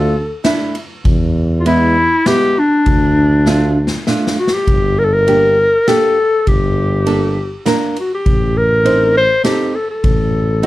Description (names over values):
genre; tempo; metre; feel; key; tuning
klezmer; 100 BPM; 3/4; straight; G minor from 4.7 s; A4 = 440 Hz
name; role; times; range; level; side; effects
warm clarinet; melody; 0.0-10.7 s; D4 to C5; -14 LUFS; left 1 dB; plate reverb
nylon-string guitar; accompaniment; 0.0-10.7 s; G#3 to C5; -16 LUFS; right 3 dB; none
mellow tuba; bass; 0.0-10.7 s; G1 to E2; -16 LUFS; equal; none
street-band drum kit; drums; 0.4-10.7 s; kick drum, ride cymbal, snare drum; -18 LUFS; equal; none
room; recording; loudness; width
light reverb; dark, warm production; -11 LUFS; side -16 dB against mid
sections
0.0-4.7 A section; 4.7-10.7 B section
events
drum fill 3.5-4.7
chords
0.0 Dm; 1.1 E; 2.9 Dm; 4.7 Gm; 8.3 Adim